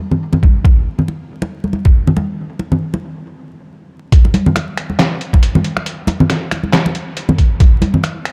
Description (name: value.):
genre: dubstep.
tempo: 138 BPM.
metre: 4/4.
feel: swing 56% on 16ths, half-time.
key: none.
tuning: none.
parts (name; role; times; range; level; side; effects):
congas; percussion; 0.1-8.1 s; none; -19 LUFS; equal; none.
electronic kick drum; drums; 0.4-7.7 s; none; -11 LUFS; equal; small room ambience.
trip hop sampler-style drum kit; drums; 4.1-8.3 s; finger snaps, handclaps, hi-hat, snare drum; -21 LUFS; equal; small room ambience.
room: light reverb, digital ambience.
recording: dark, warm production, vinyl crackle.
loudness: -14 LUFS.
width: mono.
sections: 0.0-4.1 A section; 4.1-8.3 B section.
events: stop 3.3-4.1; drop 4.1-8.3.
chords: none.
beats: 0.21 | 0.65 1.08 1.51 1.95 | 2.38 2.82 3.25 3.69 | 4.12 4.56 4.99 5.43 | 5.86 6.30 6.73 7.17 | 7.60 8.04.